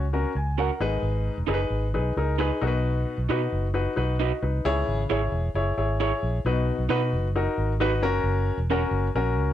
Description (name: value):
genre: soul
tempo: 133 BPM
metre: 4/4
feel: straight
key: B major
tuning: A4 = 443 Hz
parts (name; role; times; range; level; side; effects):
- warm baby grand piano; accompaniment; 0.0-9.5 s; G#2 to G#5; -26 LUFS; left 3 dB; none
- fingered electric bass; bass; 0.0-9.5 s; E1 to B2; -26 LUFS; equal; none
- electric guitar through a small old amp; stabs; 0.6-8.8 s; C#4 to C#5; -28 LUFS; right 12 dB; warbly pitch drift
room: little or no reverb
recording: dark, warm production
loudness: -23 LUFS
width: side -11 dB against mid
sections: 0.0-6.5 A section; 6.5-9.5 B section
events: none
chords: 0.0 F#; 0.8 G#m; 2.6 B; 4.7 C#m; 6.5 B; 8.0 F#